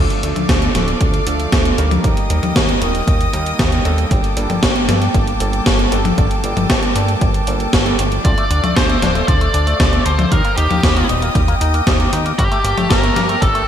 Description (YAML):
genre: italo disco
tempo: 116 BPM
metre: 4/4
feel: straight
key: G minor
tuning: A4 = 440 Hz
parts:
  - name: rich chamber string section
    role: sustained chords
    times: 0.0-13.7 s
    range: Bb3 to Eb6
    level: -23 LUFS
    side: left 1 dB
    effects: none
  - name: warm electric grand piano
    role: stabs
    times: 0.0-8.5 s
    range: F3 to D5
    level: -25 LUFS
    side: right 3 dB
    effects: lush chorus, ping-pong delay
  - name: chorused synth bass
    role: bass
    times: 0.0-13.6 s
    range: D1 to G2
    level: -19 LUFS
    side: equal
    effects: none
  - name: gated 80s digital drum machine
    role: drums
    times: 0.1-13.7 s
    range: hi-hat, snare drum, toms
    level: -18 LUFS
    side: left 1 dB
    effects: gated reverb, gated reverb snare, small room ambience
  - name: electronic kick drum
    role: drums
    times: 0.5-13.5 s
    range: none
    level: -18 LUFS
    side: equal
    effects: small room ambience
  - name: biting lead guitar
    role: melody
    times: 8.2-13.7 s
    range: G4 to D5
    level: -20 LUFS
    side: equal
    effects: overdrive, digital delay
  - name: electric guitar with an envelope filter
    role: arpeggios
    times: 8.2-13.6 s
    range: F3 to Eb4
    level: -25 LUFS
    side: left 4 dB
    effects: ping-pong delay
room: moderate lush hall reverb, RT60 2.7 s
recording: bright 1980s-style digital production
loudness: -13 LUFS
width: side -9 dB against mid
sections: 0.0-13.7 A section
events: none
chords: 0.0 Dm; 2.0 Eb; 4.1 Gmadd9; 8.2 Dm; 10.3 Eb; 12.4 Gmadd9